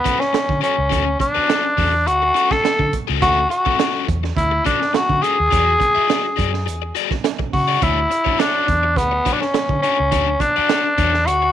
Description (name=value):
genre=funk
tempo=104 BPM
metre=4/4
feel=straight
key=unclear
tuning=A4 = 440 Hz
part: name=breathy tenor saxophone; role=melody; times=0.0-11.5 s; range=B3 to A4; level=-17 LUFS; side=left 1 dB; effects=none
part: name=crunchy overdriven guitar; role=accompaniment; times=0.0-11.5 s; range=C#4 to E5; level=-24 LUFS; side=left 17 dB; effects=none
part: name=crunchy breakbeat drum kit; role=drums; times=0.1-11.4 s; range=hi-hat, kick drum, snare drum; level=-23 LUFS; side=right 5 dB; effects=none
part: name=vintage muted fingered electric bass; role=bass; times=0.5-11.5 s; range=C#2 to D3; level=-22 LUFS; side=equal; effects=none
room=small room ambience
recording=1960s-style stereo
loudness=-15 LUFS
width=side -10 dB against mid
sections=0.0-11.5 A section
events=none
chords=0.0 Dmaj7; 5.5 E9; 7.8 Dmaj7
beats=0.34 | 0.92 1.50 2.07 2.65 | 3.22 3.80 4.37 4.95 | 5.53 6.10 6.67 7.25 | 7.83 8.40 8.97 9.55 | 10.12 10.70 11.28